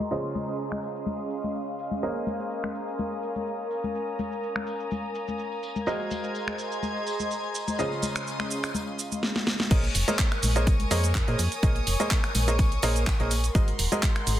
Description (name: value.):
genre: piano house.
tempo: 125 BPM.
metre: 4/4.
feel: swing 54% on 16ths.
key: Bb minor.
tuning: A4 = 440 Hz.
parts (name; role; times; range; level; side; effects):
warm studio violin section; sustained chords; 0.0-14.4 s; Db4 to Ab6; -36 LUFS; left 2 dB; sidechain pumping, low-pass filter.
clear upright piano; riff; 0.0-14.1 s; Db3 to Eb5; -32 LUFS; right 2 dB; vintage 12-bit sampler grit, sidechain pumping, digital delay.
house drum kit; drums; 0.0-14.4 s; crash cymbal, finger snaps, handclaps, hi-hat, shaker, snare drum; -30 LUFS; right 1 dB; soft clipping on snare.
tambourine and congas; percussion; 0.0-14.4 s; none; -35 LUFS; left 3 dB; none.
airy breathy pad; texture; 0.0-14.4 s; Db4 to Db6; -34 LUFS; right 1 dB; chorus, sidechain pumping.
solid FM bass; bass; 9.7-14.4 s; Eb1 to Bb2; -26 LUFS; equal; sidechain pumping.
electronic kick drum; drums; 9.7-14.1 s; none; -24 LUFS; equal; none.
room: light reverb.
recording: dense, heavily limited modern master, low-pass filter.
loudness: -25 LUFS.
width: side -12 dB against mid.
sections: 0.0-9.7 A section; 9.7-14.4 B section.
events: filter sweep on violin section 0.0-9.7; filter sweep 0.0-9.7; drum fill 9.2-9.7; drop 9.7-14.4.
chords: 0.1 Dbmaj9; 2.0 Bbm11; 5.9 Ab9; 7.8 Dbmaj9; 9.7 Bbm11; 13.6 Ab9.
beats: | 0.11 0.59 1.07 1.55 | 2.03 2.51 2.99 3.47 | 3.95 4.43 4.91 5.39 | 5.87 6.35 6.83 7.31 | 7.79 8.27 8.75 9.23 | 9.71 10.19 10.67 11.15 | 11.63 12.11 12.59 13.07 | 13.55 14.03.